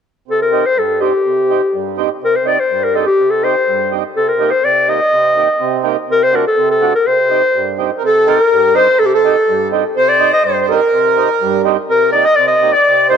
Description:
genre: klezmer.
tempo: 124 BPM.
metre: 2/4.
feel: straight.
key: unclear.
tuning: A4 = 437 Hz.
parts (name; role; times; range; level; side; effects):
warm clarinet; melody; 0.3-13.2 s; G4 to Eb5; -12 LUFS; left 2 dB; none.
mellow accordion; accompaniment; 0.3-13.2 s; G2 to G4; -19 LUFS; right 12 dB; none.
accordion; second line; 8.0-13.2 s; A4 to Eb5; -18 LUFS; right 10 dB; none.
room: moderate plate reverb, RT60 3.1 s.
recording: 1960s-style stereo.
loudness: -11 LUFS.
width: side -7 dB against mid.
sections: 0.3-8.0 A section; 8.0-13.2 A section.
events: none.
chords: 0.3 Cm; 4.2 Eb/C; 6.1 D/C; 7.1 Cm; 11.9 Eb/C.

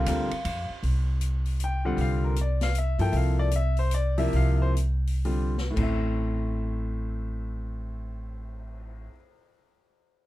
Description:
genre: modal jazz.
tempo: 110-156 BPM.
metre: 3/4.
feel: swing 64% on 8ths.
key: A phrygian.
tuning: A4 = 438 Hz.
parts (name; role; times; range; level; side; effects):
vibraphone with medium hard mallets; melody; 0.0-0.7 s; F5; -32 LUFS; left 1 dB; none.
clear baby grand piano; accompaniment; 0.0-9.2 s; A2 to G5; -30 LUFS; left 2 dB; none.
upright bass; bass; 0.0-9.1 s; A1 to G2; -26 LUFS; equal; none.
open jazz drum kit; drums; 0.1-8.9 s; crash cymbal, cymbal swell, hi-hat, kick drum, ride cymbal, snare drum; -38 LUFS; left 2 dB; none.
room: little or no reverb.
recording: close, detailed microphones.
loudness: -24 LUFS.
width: side -16 dB against mid.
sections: 0.8-5.8 A section; 5.8-9.0 B section.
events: slowing down 3.1-5.8.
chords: 0.0 C9sus4; 5.8 Am.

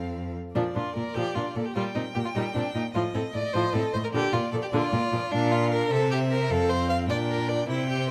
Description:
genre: quick classical-period movement for string quartet.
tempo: 101 BPM (dotted quarters).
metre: 6/8.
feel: straight.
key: Bb major.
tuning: A4 = 440 Hz.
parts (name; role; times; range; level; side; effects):
rich violin; melody; 0.0-8.1 s; D5 to G5; -38 LUFS; equal; none.
rich violin; second line; 0.0-8.1 s; D4 to F5; -31 LUFS; equal; none.
clear viola; accompaniment; 0.0-8.1 s; D3 to D4; -33 LUFS; equal; none.
rich cello; bass; 0.0-8.1 s; F2 to C3; -31 LUFS; equal; none.
room: moderate recital hall reverb, RT60 1.6 s.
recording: none.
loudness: -27 LUFS.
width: mono.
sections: 0.6-8.1 A section.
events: none.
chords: 0.0 F; 0.6 Bb; 1.8 C5/Bb; 2.9 F7/A; 4.1 Bb; 5.9 C; 6.5 F5; 7.1 Gm/Bb.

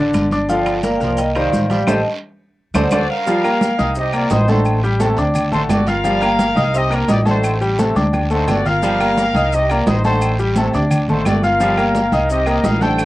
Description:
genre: latin, salsa.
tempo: 173 BPM.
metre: 4/4.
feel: straight.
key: G minor.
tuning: A4 = 439 Hz.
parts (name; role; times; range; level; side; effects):
clear concert grand piano; accompaniment; 0.0-13.1 s; D3 to F6; -19 LUFS; left 1 dB; cassette tape.
upright bass; bass; 0.0-13.1 s; G1 to D2; -20 LUFS; equal; none.
claves; percussion; 0.1-13.1 s; none; -32 LUFS; left 3 dB; none.
congas; percussion; 0.1-13.1 s; none; -21 LUFS; equal; none.
guiro; percussion; 0.1-13.1 s; none; -34 LUFS; right 5 dB; none.
maracas; percussion; 0.1-13.1 s; none; -38 LUFS; left 4 dB; none.
timbales and agogo bells; percussion; 0.1-13.1 s; none; -25 LUFS; right 3 dB; none.
vibraphone with hard mallets; melody; 0.5-3.0 s; C5 to A5; -21 LUFS; right 2 dB; cassette tape.
clear trombone section; second line; 0.5-13.1 s; C3 to A3; -24 LUFS; right 2 dB; cassette tape.
clear trumpet section; melody; 2.7-13.1 s; D4 to G5; -20 LUFS; equal; cassette tape.
room: light reverb.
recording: home recording on cassette.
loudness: -14 LUFS.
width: side -17 dB against mid.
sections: 0.0-3.3 A section; 3.3-13.1 B section.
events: band accent 1.9-3.3; drum fill 2.2-3.3, 8.0-8.8.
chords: 0.5 Gm7; 1.2 Cm7; 1.9 Am7; 2.6 D7; 3.3 Gm7; 4.0 Cm7; 4.7 Am7b5; 5.4 D; 6.0 Gm7; 6.7 Cm7; 7.4 Am7b5; 8.1 D7; 8.8 Gm7; 9.5 Cm7; 10.2 Am7b5; 10.9 D7; 11.6 Gm7; 12.3 Cm7.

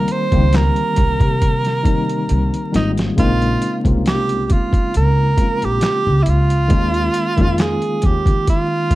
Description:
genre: R&B, neo-soul.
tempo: 68 BPM.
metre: 4/4.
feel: swing 54% on 16ths.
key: Bb dorian.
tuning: A4 = 439 Hz.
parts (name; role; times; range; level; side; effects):
edgy tenor saxophone; melody; 0.0-8.9 s; Eb4 to C5; -20 LUFS; right 3 dB; plate reverb.
barky reed electric piano; accompaniment; 0.0-8.9 s; Db3 to G4; -21 LUFS; left 2 dB; fast tremolo, plate reverb.
dusty soul sampler-style drum kit; drums; 0.1-8.9 s; handclaps, hi-hat, kick drum, snare drum; -18 LUFS; equal; none.
upright bass; bass; 0.3-8.9 s; Ab1 to Eb3; -18 LUFS; equal; none.
room: light reverb.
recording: dark, warm production, vinyl crackle.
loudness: -14 LUFS.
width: side -17 dB against mid.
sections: 0.0-8.9 A section.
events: drum fill 2.3-3.2.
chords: 0.0 Cm7; 3.2 Bbm11; 6.7 Eb9sus4.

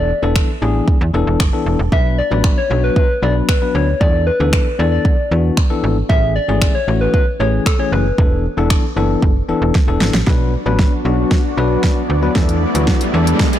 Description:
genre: dance-pop.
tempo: 115 BPM.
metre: 4/4.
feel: straight.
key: B dorian.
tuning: A4 = 437 Hz.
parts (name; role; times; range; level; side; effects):
soft struck synth lead; melody; 0.0-8.7 s; A4 to E5; -20 LUFS; left 2 dB; chorus, ping-pong delay.
bell-like tine electric piano; accompaniment; 0.0-13.5 s; E3 to B4; -20 LUFS; left 5 dB; sidechain pumping.
slap-like FM bass; bass; 0.0-13.3 s; E1 to E2; -17 LUFS; right 1 dB; sidechain pumping.
pop drum kit; drums; 0.4-13.6 s; finger snaps, hi-hat, kick drum, snare drum; -16 LUFS; right 1 dB; overdrive, soft clipping on snare.
soft supersaw; sustained chords; 10.3-13.6 s; A3 to D5; -22 LUFS; equal; sidechain pumping.
riser; sound effects; 11.5-13.6 s; none; -24 LUFS; right 2 dB; none.
room: digital ambience.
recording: blown-out, overdriven recording, overdrive.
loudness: -13 LUFS.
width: side -11 dB against mid.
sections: 0.0-10.3 A section; 10.3-13.6 B section.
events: drum fill 9.7-10.3, 10.3-13.6; build-up 10.3-13.6; filter sweep 10.3-13.6; riser 11.5-13.6.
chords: 0.0 E7sus4; 1.9 Bm; 4.0 E7sus4; 6.1 Amaj7; 8.2 E7sus4; 10.3 Bm; 12.4 E7sus4.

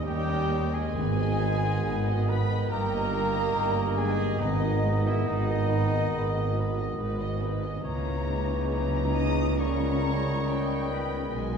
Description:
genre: classical, slow romantic movement for symphony orchestra.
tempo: 69 BPM.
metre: 4/4.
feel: uneven beats, rubato.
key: G# minor.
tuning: A4 = 439 Hz.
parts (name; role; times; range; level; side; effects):
muted studio violin section; melody; 0.0-11.6 s; B4 to A#5; -39 LUFS; left 5 dB; none.
clear clarinet; second line; 0.0-11.6 s; G3 to C#4; -39 LUFS; left 2 dB; none.
concert flute; second line; 0.0-11.3 s; D#5 to D#6; -39 LUFS; left 1 dB; none.
muted studio violin section; second line; 0.0-11.3 s; D#5 to D#6; -38 LUFS; left 5 dB; none.
warm oboe; second line; 0.0-11.6 s; C#5 to D#5; -40 LUFS; equal; none.
mellow bassoon; accompaniment; 0.0-11.6 s; D#3 to G3; -36 LUFS; equal; none.
muted studio viola section; accompaniment; 0.0-11.6 s; F#3 to A#4; -38 LUFS; equal; none.
muted studio cello section; bass; 0.0-11.6 s; D#2 to C#3; -30 LUFS; right 2 dB; none.
clear French horn section; sustained chords; 0.1-11.3 s; D#3 to D#4; -35 LUFS; left 4 dB; none.
mellow trumpet; stabs; 0.1-11.3 s; D#4 to D#5; -33 LUFS; right 2 dB; none.
muted studio double bass section; bass; 0.1-11.6 s; G1 to D#2; -31 LUFS; right 2 dB; none.
timpani; percussion; 0.9-5.7 s; G#2; -36 LUFS; left 2 dB; none.
room: wet recital hall reverb, RT60 1.6 s.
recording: heard from further back in the room.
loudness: -24 LUFS.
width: side -6 dB against mid.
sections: 0.0-11.6 A section.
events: none.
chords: 0.0 D#7; 1.0 G#m; 2.7 D#/G; 4.4 G#m; 7.8 A#dim/C#; 9.6 D#7/C#.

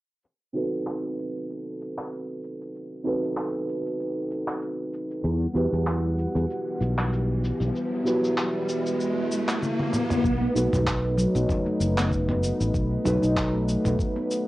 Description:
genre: organic downtempo.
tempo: 96 BPM.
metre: 4/4.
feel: swing 55% on 16ths.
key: B phrygian dominant.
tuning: A4 = 440 Hz.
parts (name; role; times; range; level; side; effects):
dusty soul sampler-style drum kit; drums; 0.2-14.4 s; cabasa, handclaps, toms; -31 LUFS; equal; cassette tape.
muted felt-like synth keys; accompaniment; 0.5-14.5 s; B3 to B4; -29 LUFS; right 1 dB; chorus, sidechain pumping, low-pass filter, cassette tape, tape echo.
warm analog pad; sustained chords; 5.2-14.5 s; E3 to F#5; -31 LUFS; left 1 dB; chorus, sidechain pumping, cassette tape.
fretless electric bass; bass; 5.2-13.9 s; F#1 to E2; -25 LUFS; equal; ensemble chorus, sidechain pumping.
riser; sound effects; 7.4-10.2 s; none; -30 LUFS; equal; none.
electronic kick drum; drums; 10.2-14.1 s; none; -29 LUFS; equal; cassette tape.
handpan; arpeggios; 10.4-14.5 s; F#3 to D#4; -28 LUFS; equal; cassette tape, tape echo.
room: wet studio reverb, RT60 0.6 s.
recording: home recording on cassette, low-pass filter.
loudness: -23 LUFS.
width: side -17 dB against mid.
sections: 0.2-10.2 A section; 10.2-14.5 B section.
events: filter sweep on synth keys 0.2-10.2; filter sweep 0.2-10.2; riser 7.4-10.2; drum fill 9.6-10.2.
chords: 0.2 B7b9; 5.2 Emadd9; 10.2 B7.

